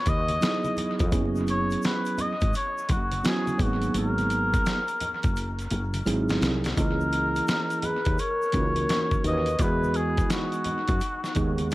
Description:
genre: hip hop, jazz-hop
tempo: 85 BPM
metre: 4/4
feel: swing 64% on 16ths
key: C# dorian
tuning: A4 = 440 Hz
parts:
  - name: trumpet with cup mute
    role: melody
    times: 0.0-11.7 s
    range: F#4 to D#5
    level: -29 LUFS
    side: left 1 dB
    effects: dub echo
  - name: woody fretless electric bass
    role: bass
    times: 0.1-11.7 s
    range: F#1 to F#2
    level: -28 LUFS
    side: equal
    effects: none
  - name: dusty soul sampler-style drum kit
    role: drums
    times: 0.1-11.7 s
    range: hi-hat, kick drum, snare drum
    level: -28 LUFS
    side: equal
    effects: none
  - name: congas and tube shaker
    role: percussion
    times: 0.1-11.7 s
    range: none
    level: -39 LUFS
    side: left 1 dB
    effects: dub echo
  - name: mellow tine electric piano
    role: accompaniment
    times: 0.4-11.7 s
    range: D#3 to D#5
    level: -29 LUFS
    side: right 2 dB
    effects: dub echo
  - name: vibraphone with soft mallets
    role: second line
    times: 6.8-11.7 s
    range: D#4 to B4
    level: -32 LUFS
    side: left 1 dB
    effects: dub echo
room: light reverb, small room ambience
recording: echo-heavy mix, vinyl crackle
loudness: -23 LUFS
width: side -18 dB against mid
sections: 0.0-6.8 A section; 6.8-11.7 B section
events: muted trumpet solo 0.0-6.8; drum fill 5.4-6.8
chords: 0.0 Emaj9; 1.1 F#9sus4; 3.6 G#m9; 6.1 G#7b13; 6.8 C#m69; 9.6 Emaj9

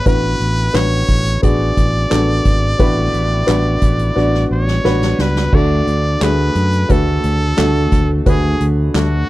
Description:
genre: piano-driven pop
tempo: 88 BPM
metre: 4/4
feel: straight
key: unclear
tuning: A4 = 441 Hz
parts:
  - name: brilliant trumpet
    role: melody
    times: 0.0-9.3 s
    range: F#4 to D5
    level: -21 LUFS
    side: equal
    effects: none
  - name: warm upright piano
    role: accompaniment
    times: 0.0-9.3 s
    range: A2 to D5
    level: -18 LUFS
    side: equal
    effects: none
  - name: fingered electric bass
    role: bass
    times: 0.1-9.2 s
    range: G#1 to F#2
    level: -17 LUFS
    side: equal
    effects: none
  - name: soft-mallet drum kit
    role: drums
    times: 0.1-9.1 s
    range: crash cymbal, handclaps, hi-hat, kick drum, snare drum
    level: -18 LUFS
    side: equal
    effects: none
room: light reverb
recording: none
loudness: -12 LUFS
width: side -16 dB against mid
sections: 0.0-5.5 A section; 5.5-9.3 B section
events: drum fill 4.2-5.5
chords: 0.1 Bm; 5.5 D

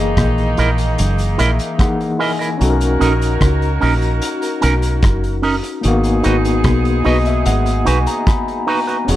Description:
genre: lovers rock reggae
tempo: 74 BPM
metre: 4/4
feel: straight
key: unclear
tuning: A4 = 441 Hz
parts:
  - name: clear horn section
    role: second line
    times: 0.0-9.2 s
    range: D#3 to A#4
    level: -24 LUFS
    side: right 1 dB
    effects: none
  - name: overdriven tine electric piano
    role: accompaniment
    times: 0.0-9.2 s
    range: E3 to B5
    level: -19 LUFS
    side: left 3 dB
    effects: fast tremolo, tape echo
  - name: deep dub fingered electric bass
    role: bass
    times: 0.0-9.2 s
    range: E1 to C#2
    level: -16 LUFS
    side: equal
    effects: none
  - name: vintage drum kit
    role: drums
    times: 0.2-9.2 s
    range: hi-hat, kick drum, rim click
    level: -20 LUFS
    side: equal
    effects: none
  - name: electric guitar with an envelope filter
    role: stabs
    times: 0.6-9.0 s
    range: C#4 to D#5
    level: -20 LUFS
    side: right 5 dB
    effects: spring reverb
room: little or no reverb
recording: none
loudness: -14 LUFS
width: side -14 dB against mid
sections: 0.0-9.2 A section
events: tine electric piano fill 1.0-2.6, 6.6-9.1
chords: 0.0 F#13; 2.6 Bmaj9; 5.8 G#m7

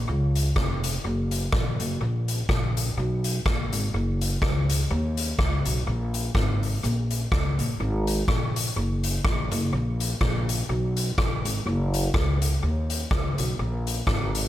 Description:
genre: ska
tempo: 124 BPM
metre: 4/4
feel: swing 56% on 8ths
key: F# major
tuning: A4 = 440 Hz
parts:
  - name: upright bass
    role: bass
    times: 0.0-14.5 s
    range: E#1 to D#2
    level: -25 LUFS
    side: equal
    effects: none
  - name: street-band drum kit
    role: drums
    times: 0.4-14.4 s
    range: hi-hat, kick drum, rim click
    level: -27 LUFS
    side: equal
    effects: tape echo
room: little or no reverb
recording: none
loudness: -23 LUFS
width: side -13 dB against mid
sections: 0.0-14.5 A section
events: none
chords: none

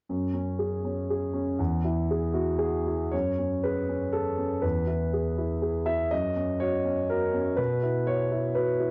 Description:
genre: neoclassical minimalist piano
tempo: 120 BPM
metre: 3/4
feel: uneven beats, rubato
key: F# dorian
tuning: A4 = 439 Hz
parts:
  - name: warm concert grand piano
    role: solo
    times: 0.1-8.9 s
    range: E2 to E5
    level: -28 LUFS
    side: equal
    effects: cassette tape
room: light reverb, studio reverb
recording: home recording on cassette, nothing above 7.7 kHz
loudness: -28 LUFS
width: mono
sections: 0.1-3.1 A section; 3.1-8.9 B section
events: none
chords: 0.1 F#sus2; 1.6 E; 3.1 F#madd9; 4.6 E; 6.1 F#; 7.6 Bsus4

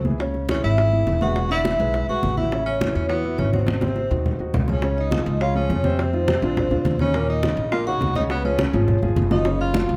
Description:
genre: Afro-Cuban jazz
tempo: 208 BPM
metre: 4/4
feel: straight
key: Db major from 4.8 s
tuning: A4 = 439 Hz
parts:
  - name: vibraphone with soft mallets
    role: melody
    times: 0.0-10.0 s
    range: B4 to F#5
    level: -29 LUFS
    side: equal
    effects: none
  - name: upright bass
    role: bass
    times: 0.0-10.0 s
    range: E1 to F2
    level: -26 LUFS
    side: equal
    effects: none
  - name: congas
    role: percussion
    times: 0.0-10.0 s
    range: none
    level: -29 LUFS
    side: equal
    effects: none
  - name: warm concert grand piano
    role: accompaniment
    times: 0.1-10.0 s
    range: Bb2 to D5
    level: -28 LUFS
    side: equal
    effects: none
  - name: bongos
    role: percussion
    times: 0.1-10.0 s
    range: none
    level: -33 LUFS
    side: equal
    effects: none
  - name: breathy tenor saxophone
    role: second line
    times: 0.5-10.0 s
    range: B3 to F#4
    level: -30 LUFS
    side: equal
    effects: none
room: light reverb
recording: none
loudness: -21 LUFS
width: mono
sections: 0.0-4.8 A section; 4.8-10.0 B section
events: drum fill 3.7-4.8, 8.9-9.5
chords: 0.2 C#m7; 1.4 E9; 2.5 A6; 3.7 G#7; 4.8 Dbmaj7; 6.0 F5; 6.6 Bb; 7.1 Ebm7; 8.3 Db; 9.5 Gb5

